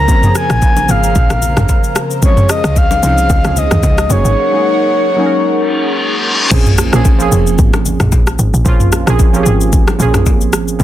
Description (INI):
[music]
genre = amapiano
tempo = 112 BPM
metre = 4/4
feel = swing 55% on 16ths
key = unclear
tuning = A4 = 440 Hz
[part]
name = breathy flute-like synth lead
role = melody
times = 0.0-6.0 s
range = Db5 to Bb5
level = -16 LUFS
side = left 1 dB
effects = chorus, ping-pong delay, plate reverb
[part]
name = warm analog keys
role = accompaniment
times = 0.0-10.8 s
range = Eb3 to Bb4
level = -17 LUFS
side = right 3 dB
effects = chorus, plate reverb
[part]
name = airy breathy pad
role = sustained chords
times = 0.0-6.5 s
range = Db3 to Bb5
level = -19 LUFS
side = left 2 dB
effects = chorus, sidechain pumping, plate reverb
[part]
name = woody log drum bass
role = bass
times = 0.0-10.8 s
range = F1 to Eb2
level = -14 LUFS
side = equal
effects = none
[part]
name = deep house drum kit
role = drums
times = 0.1-10.8 s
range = crash cymbal, kick drum, rim click, shaker, toms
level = -12 LUFS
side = equal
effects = none
[part]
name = congas and bongos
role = percussion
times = 0.1-10.8 s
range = none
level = -23 LUFS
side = left 4 dB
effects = none
[part]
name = reverse cymbal and impact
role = sound effects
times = 5.6-8.7 s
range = none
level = -17 LUFS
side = left 1 dB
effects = none
[sound]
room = light reverb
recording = dense, heavily limited modern master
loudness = -9 LUFS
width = side -13 dB against mid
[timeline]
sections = 0.0-6.5 A section; 6.5-10.8 B section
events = reverse cymbal 5.6-6.5; drop 6.5-10.8; impact 6.5-8.7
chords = 0.0 Bbm9; 2.2 Dbmaj7; 4.1 Gb69; 6.5 Bbm9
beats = | 0.08 0.62 1.16 1.69 | 2.23 2.76 3.30 3.83 | 4.37 4.91 5.44 5.98 | 6.51 7.05 7.58 8.12 | 8.66 9.19 9.73 10.26 | 10.80